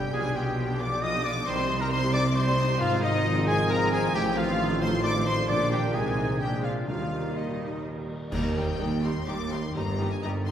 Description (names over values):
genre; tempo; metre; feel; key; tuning
classical, dramatic, fast romantic movement for symphony orchestra; 124-136 BPM; 3/4; rubato; Eb major; A4 = 439 Hz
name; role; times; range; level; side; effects
clear symphonic violin section; melody; 0.0-10.5 s; Eb5 to Eb6; -35 LUFS; left 4 dB; none
clear oboe; second line; 0.0-7.8 s; Eb4 to Eb5; -36 LUFS; right 2 dB; none
clear symphonic violin section; second line; 0.0-10.5 s; G4 to Eb6; -39 LUFS; left 2 dB; none
mellow clarinet; second line; 0.0-7.8 s; Eb4 to Eb5; -35 LUFS; left 1 dB; none
mellow silver concert flute; second line; 0.0-7.8 s; Eb5 to Eb6; -35 LUFS; left 2 dB; none
rich studio viola section; accompaniment; 0.0-10.5 s; G3 to G4; -35 LUFS; right 1 dB; none
clear trombone section; sustained chords; 0.0-8.1 s; Bb2 to Ab3; -37 LUFS; right 2 dB; none
mellow French horn section; sustained chords; 0.0-8.1 s; G3 to G4; -37 LUFS; equal; none
concert harp; arpeggios; 0.0-10.5 s; G2 to Bb5; -33 LUFS; left 3 dB; none
mellow trumpet; stabs; 0.0-7.8 s; Eb4 to Eb5; -33 LUFS; right 1 dB; none
clear symphonic double bass section; bass; 0.0-10.5 s; G1 to Eb2; -33 LUFS; right 2 dB; none
rich symphonic cello section; bass; 0.0-10.5 s; Eb2 to Eb3; -34 LUFS; right 1 dB; none
warm tuba; bass; 0.0-10.5 s; G1 to Eb2; -34 LUFS; right 1 dB; none
cymbal swell, clash cymbals and concert bass drum; percussion; 5.5-9.2 s; none; -37 LUFS; equal; none
timpani; percussion; 5.5-7.6 s; Bb2 to Eb3; -36 LUFS; equal; none
room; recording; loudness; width
wet concert hall reverb, RT60 1.9 s; heard from further back in the room, faint mains hum; -24 LUFS; side -9 dB against mid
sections
0.0-8.3 A section; 8.3-10.5 B section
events
band accent 8.3-8.8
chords
0.1 G7/B; 1.5 Cm; 2.8 Fm7/Ab; 4.2 F7/A; 5.5 Bb; 5.9 Ab/C; 6.4 Bb7; 6.9 Eb; 9.7 Eb/G